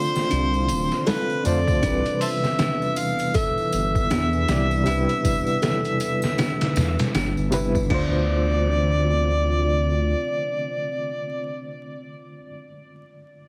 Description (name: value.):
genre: trip hop.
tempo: 79 BPM.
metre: 4/4.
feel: swing 60% on 16ths.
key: D dorian.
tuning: A4 = 440 Hz.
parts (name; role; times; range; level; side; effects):
mellow harmonica; melody; 0.0-11.7 s; A4 to F5; -29 LUFS; equal; tape echo.
overdriven reed electric piano; accompaniment; 0.0-13.5 s; C3 to F5; -30 LUFS; equal; tremolo, tape echo.
deep dark ambient pad; sustained chords; 0.0-11.7 s; E3 to D5; -34 LUFS; equal; chorus, built-in reverb.
music box; arpeggios; 0.0-8.3 s; D4 to A4; -33 LUFS; equal; tape echo.
trip hop sampler-style drum kit; drums; 0.2-8.1 s; crash cymbal, hi-hat, kick drum, snare drum; -28 LUFS; equal; overdrive, studio reverb.
tambourine and triangle; percussion; 0.2-7.9 s; none; -41 LUFS; equal; none.
dark detuned saw bass; bass; 0.3-10.1 s; D1 to F2; -26 LUFS; equal; none.
room: little or no reverb.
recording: heavily compressed radio sound, multiband compression, vinyl crackle.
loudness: -22 LUFS.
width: mono.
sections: 0.0-7.9 A section; 7.9-10.9 B section.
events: none.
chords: 0.0 Dm7; 1.8 Cmaj7; 7.9 Dm7.